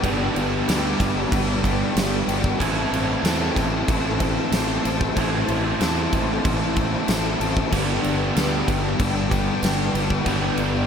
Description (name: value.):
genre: rock, shoegaze and dream pop.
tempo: 94 BPM.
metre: 4/4.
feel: straight.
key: G major.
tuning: A4 = 439 Hz.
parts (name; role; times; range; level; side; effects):
phased string machine; sustained chords; 0.0-10.9 s; B4 to E6; -34 LUFS; equal; ensemble chorus, phaser.
biting overdriven guitar; riff; 0.0-10.9 s; G2 to A4; -25 LUFS; left 10 dB; analog chorus.
raw garage guitar; riff; 0.0-10.9 s; G2 to E4; -26 LUFS; right 9 dB; overdrive, reverse reverb.
fuzz fingered electric bass; bass; 0.0-10.8 s; G1 to E2; -27 LUFS; equal; overdrive.
huge arena drum kit; drums; 0.0-10.7 s; crash cymbal, kick drum, snare drum; -25 LUFS; right 1 dB; none.
tambourine; percussion; 0.7-9.8 s; none; -38 LUFS; right 8 dB; none.
sludgy distorted guitar; riff; 7.7-10.9 s; G2 to G3; -28 LUFS; equal; overdrive.
room: light reverb, small room ambience.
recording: none.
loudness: -19 LUFS.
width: side -7 dB against mid.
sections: 0.0-10.9 A section.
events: none.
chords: 0.0 G; 2.6 Am7; 7.7 Gadd9.